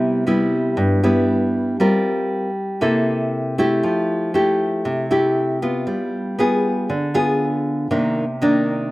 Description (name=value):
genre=bossa nova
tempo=118 BPM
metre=4/4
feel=straight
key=unclear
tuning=A4 = 439 Hz
part: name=nylon-string guitar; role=solo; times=0.0-8.9 s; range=G2 to Bb4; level=-17 LUFS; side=equal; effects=slapback echo
room=light reverb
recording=recorded outdoors, with no room sound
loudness=-17 LUFS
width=side -19 dB against mid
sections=0.0-8.9 A section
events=none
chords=0.0 Cmaj7; 1.8 Gm7; 2.8 C6; 3.8 Fmaj9; 5.9 G7b9; 7.9 Cm9